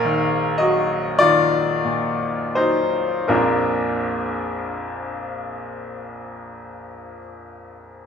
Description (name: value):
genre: classical, romantic nocturne for solo piano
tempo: 26-37 BPM (dotted quarters)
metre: 6/8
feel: rubato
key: Bb major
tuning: A4 = 440 Hz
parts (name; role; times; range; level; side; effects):
- bright upright piano; solo; 0.0-8.1 s; Bb1 to F5; -19 LUFS; left 1 dB; none
room: moderate recital hall reverb, RT60 1.6 s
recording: recorded in a church or concert hall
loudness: -18 LUFS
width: side -7 dB against mid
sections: 0.0-3.3 A section; 3.3-7.4 B section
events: slowing down 0.0-3.3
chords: 0.0 Ebm/Bb; 3.3 Bb